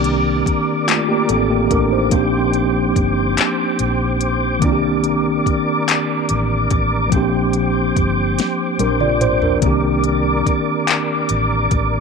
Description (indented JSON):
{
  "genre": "slow six-eight R&B",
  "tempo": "48 BPM (dotted quarters)",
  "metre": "6/8",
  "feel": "straight",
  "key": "unclear",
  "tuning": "A4 = 440 Hz",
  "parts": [
    { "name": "mellow tine electric piano", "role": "accompaniment", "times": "0.0-12.0 s", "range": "D3 to D5", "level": "-18 LUFS", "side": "equal", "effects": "medium stereo tremolo" },
    { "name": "tonewheel organ", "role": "sustained chords", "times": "0.0-12.0 s", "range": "Bb4 to D6", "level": "-21 LUFS", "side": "equal", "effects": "overdrive, chorus vibrato, slow rotary speaker" },
    { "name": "vintage muted fingered electric bass", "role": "bass", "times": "0.0-12.0 s", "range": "G1 to C2", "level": "-21 LUFS", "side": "equal", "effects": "none" },
    { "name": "smooth R&B drum kit", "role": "drums", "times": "0.0-11.9 s", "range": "handclaps, hi-hat, kick drum, snare drum, toms", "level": "-20 LUFS", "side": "left 3 dB", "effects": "none" }
  ],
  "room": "light reverb",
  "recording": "1960s-style stereo",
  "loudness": "-15 LUFS",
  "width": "side -5 dB against mid",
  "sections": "0.0-12.0 A section",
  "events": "drum fill 8.4-9.6",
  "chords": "0.0 Cm9; 2.1 Bb69; 4.6 Cm9; 7.1 Bb69; 9.6 Cm9"
}